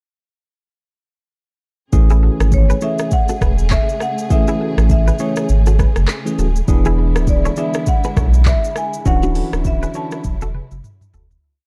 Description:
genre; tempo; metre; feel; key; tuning
afrobeats; 101 BPM; 4/4; swing 58% on 16ths; A major; A4 = 438 Hz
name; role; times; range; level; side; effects
bell-like tine electric piano; accompaniment; 1.9-10.2 s; E3 to G#4; -24 LUFS; equal; none
warm studio string section; sustained chords; 1.9-11.4 s; C#3 to G#4; -31 LUFS; equal; none
warm sub bass; bass; 1.9-11.4 s; D1 to B1; -17 LUFS; equal; none
afro-pop drum kit; drums; 1.9-11.4 s; handclaps, hi-hat, kick drum, rim click, shaker, toms; -20 LUFS; equal; none
clean electric guitar; riff; 2.1-11.3 s; D4 to D5; -30 LUFS; equal; tremolo, tape echo
marimba with medium hard mallets; melody; 2.5-11.1 s; C#5 to A5; -26 LUFS; equal; none
room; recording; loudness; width
little or no reverb; dark, warm production; -16 LUFS; mono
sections
1.9-11.4 chorus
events
fade-out 9.1-11.4; drum fill 10.2-11.4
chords
1.9 Amaj7; 6.7 E7; 9.1 Dmaj9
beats
| 1.93 2.52 3.12 3.71 | 4.30 4.90 5.49 6.09 | 6.68 7.28 7.87 8.46 | 9.06 9.65 10.24 10.84

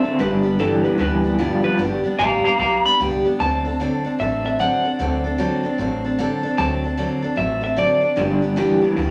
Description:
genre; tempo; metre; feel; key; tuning
rockabilly; 150 BPM; 4/4; swing 64% on 8ths; G major; A4 = 439 Hz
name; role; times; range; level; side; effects
electric guitar through a small old amp; melody; 0.0-8.6 s; A4 to B5; -23 LUFS; equal; none
picked steel-string acoustic guitar; accompaniment; 0.0-9.1 s; G2 to A4; -24 LUFS; equal; none
electric guitar through a small old amp; riff; 0.0-1.8, 8.2-9.1 s; G2 to C4; -22 LUFS; equal; tremolo
upright bass; bass; 0.0-9.1 s; G1 to D2; -31 LUFS; equal; none
room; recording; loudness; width
wet large studio reverb, RT60 0.8 s; none; -20 LUFS; mono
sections
0.0-1.8 A section; 1.8-9.1 A section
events
clean electric guitar solo 0.0-9.1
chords
0.2 G; 3.4 D7; 8.2 G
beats
| 0.19 0.59 0.99 1.39 | 1.79 2.19 2.59 2.99 | 3.39 3.79 4.19 4.59 | 4.99 5.39 5.78 6.18 | 6.58 6.98 7.38 7.77 | 8.17 8.57 8.97

